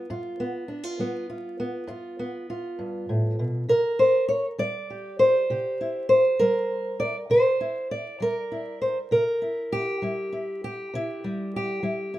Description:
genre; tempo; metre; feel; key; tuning
acoustic country blues, solo or duo; 66 BPM (dotted quarters); 12/8; straight; unclear; A4 = 439 Hz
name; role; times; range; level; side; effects
fingerpicked old ladder-braced acoustic guitar; solo; 0.0-12.2 s; G2 to D5; -23 LUFS; equal; none
room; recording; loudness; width
moderate studio reverb, RT60 0.6 s; minimal, uncompressed stereo recording, vinyl crackle; -23 LUFS; side -15 dB against mid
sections
0.0-12.2 A section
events
none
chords
0.0 G7; 3.7 C7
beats
| 0.09 0.99 1.89 2.78 | 3.69 4.59 5.49 6.39 | 7.30 8.20 9.11 10.02 | 10.92 11.82

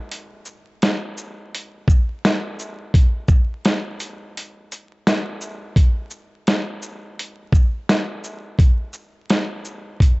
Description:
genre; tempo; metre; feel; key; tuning
hip hop; 85 BPM; 4/4; swing 62% on 16ths; none; none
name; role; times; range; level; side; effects
dusty soul sampler-style drum kit; drums; 0.1-10.2 s; hi-hat, kick drum, shaker, snare drum; -17 LUFS; equal; none
room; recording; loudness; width
light reverb; vinyl crackle, nothing above 7.9 kHz; -18 LUFS; side -25 dB against mid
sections
0.0-5.8 A section; 5.8-10.2 B section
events
break 4.3-5.8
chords
none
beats
| 0.11 0.82 1.52 2.23 | 2.94 3.64 4.35 5.05 | 5.76 6.47 7.17 7.88 | 8.58 9.29 9.99

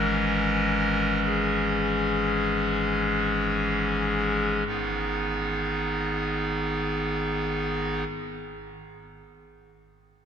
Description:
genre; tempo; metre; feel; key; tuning
classical, chorale-style piece for pipe organ; free time; none; none; G# minor; A4 = 441 Hz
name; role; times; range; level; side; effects
pipe organ, clarinet reed; solo; 0.0-8.0 s; G#1 to A#4; -24 LUFS; left 1 dB; none
room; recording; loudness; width
wet cathedral reverb, RT60 4.1 s; none; -24 LUFS; side -8 dB against mid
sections
0.0-4.7 A section; 4.7-10.3 B section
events
slowing down 0.0-4.7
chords
0.0 C#m/G#; 4.7 G#m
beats
free time

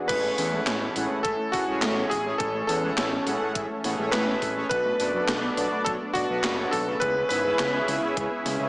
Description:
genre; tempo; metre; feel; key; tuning
synthwave; 104 BPM; 4/4; straight; A major; A4 = 440 Hz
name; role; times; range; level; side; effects
lush unison pad; sustained chords; 0.0-8.7 s; C#3 to B4; -30 LUFS; equal; chorus, sidechain pumping
clear electric grand piano; melody; 0.1-8.7 s; F#4 to B4; -27 LUFS; equal; tape echo
soft round pluck; arpeggios; 0.1-8.7 s; F#3 to C#4; -37 LUFS; left 1 dB; chorus, digital delay
analog synth brass; stabs; 0.1-8.7 s; A2 to F#5; -30 LUFS; equal; chorus, digital delay
fat analog bass; bass; 0.1-8.7 s; F#1 to A2; -33 LUFS; equal; tube saturation, sidechain pumping
electronic kick drum; drums; 0.1-8.3 s; none; -38 LUFS; equal; none
gated 80s digital drum machine; drums; 0.1-8.6 s; crash cymbal, handclaps, hi-hat, snare drum; -29 LUFS; equal; gated reverb, gated reverb snare, overdrive
room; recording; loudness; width
moderate lush hall reverb, RT60 1.6 s; small speaker sound; -23 LUFS; side -24 dB against mid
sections
0.1-8.7 A section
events
none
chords
0.1 Amaj7; 4.7 Bm7; 7.0 C#m7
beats
| 0.09 0.67 1.25 1.82 | 2.40 2.98 3.55 4.13 | 4.71 5.29 5.86 6.44 | 7.02 7.59 8.17

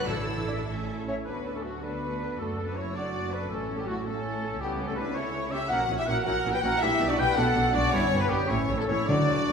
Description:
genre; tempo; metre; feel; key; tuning
classical; 108 BPM (dotted quarters); 6/8; rubato; D major; A4 = 440 Hz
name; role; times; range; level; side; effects
warm symphonic violin section; melody; 0.0-9.5 s; F#4 to E6; -38 LUFS; left 3 dB; none
warm oboe; second line; 0.0-9.5 s; E4 to G5; -36 LUFS; right 1 dB; none
warm symphonic violin section; second line; 0.0-9.5 s; F#4 to G5; -33 LUFS; left 4 dB; none
clear symphonic viola section; accompaniment; 0.0-9.5 s; F#3 to A4; -37 LUFS; right 1 dB; none
rich studio cello section; bass; 0.0-9.5 s; D2 to A4; -36 LUFS; right 1 dB; none
rich symphonic double bass section; bass; 0.0-9.5 s; F#1 to D2; -34 LUFS; right 2 dB; none
warm French horn section; sustained chords; 0.1-9.5 s; E3 to G4; -35 LUFS; left 2 dB; none
timpani; percussion; 0.1-0.6, 9.1-9.5 s; A2 to D3; -31 LUFS; left 1 dB; none
bright clarinet; second line; 0.5-9.5 s; E4 to G5; -36 LUFS; right 2 dB; none
bright small flute group; second line; 0.5-9.5 s; F#4 to G5; -35 LUFS; left 1 dB; none
mellow bassoon; accompaniment; 0.5-1.1 s; C#4 to D4; -40 LUFS; right 2 dB; none
warm trumpet section; stabs; 1.1-9.5 s; A3 to B4; -33 LUFS; equal; none
room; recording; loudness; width
wet recital hall reverb, RT60 1.7 s; recorded in a church or concert hall; -25 LUFS; side -6 dB against mid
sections
0.0-1.3 A section; 1.3-9.5 B section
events
none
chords
0.1 Asus4; 0.7 A; 1.3 D; 2.4 D/F#; 3.5 A; 4.6 A/C#; 5.7 F#7b9/A#; 6.8 Bm7; 7.9 G; 8.5 A7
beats
| 0.08 0.68 | 1.27 1.84 | 2.39 2.95 | 3.50 4.06 | 4.61 5.15 | 5.71 6.26 | 6.82 7.38 | 7.93 8.50 | 9.09

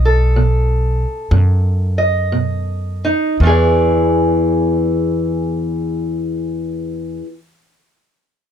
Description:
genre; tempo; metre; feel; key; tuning
acoustic country blues, solo or duo; 54-66 BPM; 4/4; swing 66% on 8ths; E mixolydian; A4 = 440 Hz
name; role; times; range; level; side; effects
fingerpicked steel-string acoustic guitar; melody; 0.0-7.3 s; E2 to D#5; -17 LUFS; equal; none
upright bass; bass; 0.0-7.2 s; B1 to F#2; -17 LUFS; equal; none
room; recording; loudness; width
moderate booth ambience, RT60 0.2 s; none; -14 LUFS; side -8 dB against mid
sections
0.0-3.4 A section; 3.4-7.9 B section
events
slowing down 0.0-3.4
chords
0.0 B7; 3.4 E7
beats
0.35 1.31 2.32 | 3.40 4.52 5.64 6.76

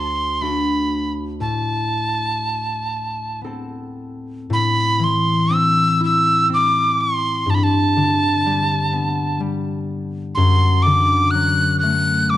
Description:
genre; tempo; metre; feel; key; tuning
celtic folk, Celtic slow air; 61 BPM; 3/4; rubato; A dorian; A4 = 440 Hz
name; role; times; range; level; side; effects
breathy bright tin whistle; melody; 0.0-12.4 s; A5 to F#6; -18 LUFS; right 1 dB; none
concert harp; accompaniment; 0.0-12.4 s; D2 to A5; -20 LUFS; left 2 dB; none
room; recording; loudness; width
moderate recital hall reverb, RT60 1.6 s; nothing above 11.0 kHz; -16 LUFS; side -13 dB against mid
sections
0.0-4.5 A section; 4.5-12.4 B section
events
harp fill 2.9-4.5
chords
0.0 D; 1.4 Amadd9; 4.5 Am; 7.5 Gadd9; 10.4 D/F#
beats
0.43 | 1.41 2.40 3.44 | 4.50 5.51 6.50 | 7.47 8.44 9.40 | 10.35 11.32 12.31

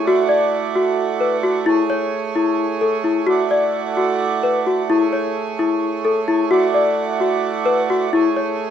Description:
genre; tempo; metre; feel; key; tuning
contemporary instrumental, chamber music in an uneven meter; 260 BPM (eighths); 7/8; straight; A major; A4 = 441 Hz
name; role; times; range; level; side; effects
hand-pumped harmonium; sustained chords; 0.0-8.7 s; A3 to D5; -21 LUFS; right 7 dB; none
small celesta; arpeggios; 0.1-8.6 s; E4 to D5; -18 LUFS; left 2 dB; none
room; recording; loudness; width
moderate scoring stage reverb, RT60 1.6 s; close, detailed microphones; -16 LUFS; side -9 dB against mid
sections
0.0-8.7 A section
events
none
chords
0.1 E9sus4; 1.7 Amaj7; 3.3 E9sus4; 4.9 Amaj7; 6.5 E9sus4; 8.1 Amaj7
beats
| 0.07 0.30 0.53 0.76 0.98 1.22 1.45 | 1.67 1.90 2.13 2.36 2.59 2.82 3.05 | 3.28 3.51 3.75 3.98 4.21 4.43 4.67 | 4.90 5.13 5.36 5.59 5.82 6.05 6.28 | 6.51 6.74 6.97 7.21 7.44 7.67 7.90 | 8.13 8.36 8.59

